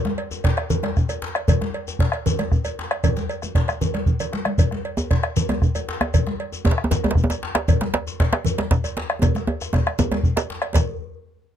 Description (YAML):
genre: west african traditional, West African drum ensemble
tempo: 155 BPM (dotted quarters)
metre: 12/8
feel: straight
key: none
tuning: none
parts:
  - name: djembe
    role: percussion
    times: 0.0-10.9 s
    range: none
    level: -28 LUFS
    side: left 3 dB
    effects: none
  - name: bombo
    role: percussion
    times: 0.1-10.9 s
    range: none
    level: -20 LUFS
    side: equal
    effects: none
  - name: congas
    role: percussion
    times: 0.1-10.9 s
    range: none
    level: -27 LUFS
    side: right 3 dB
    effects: none
  - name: cowbell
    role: percussion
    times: 0.2-10.9 s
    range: none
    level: -31 LUFS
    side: right 6 dB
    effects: none
  - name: shekere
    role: percussion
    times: 0.3-10.9 s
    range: none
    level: -29 LUFS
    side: left 6 dB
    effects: none
  - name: djembe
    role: percussion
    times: 5.0-10.9 s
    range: none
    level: -24 LUFS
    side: right 2 dB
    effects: none
room: light reverb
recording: close, detailed microphones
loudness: -19 LUFS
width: side -10 dB against mid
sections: 0.0-10.8 A section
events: drum fill 4.1-4.6, 9.2-10.8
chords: none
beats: 0.31 0.70 1.09 | 1.48 1.87 2.26 2.65 | 3.04 3.43 3.81 4.20 | 4.59 4.98 5.36 5.75 | 6.14 6.52 6.91 7.30 | 7.68 8.07 8.45 8.84 | 9.22 9.61 9.99 10.37 | 10.76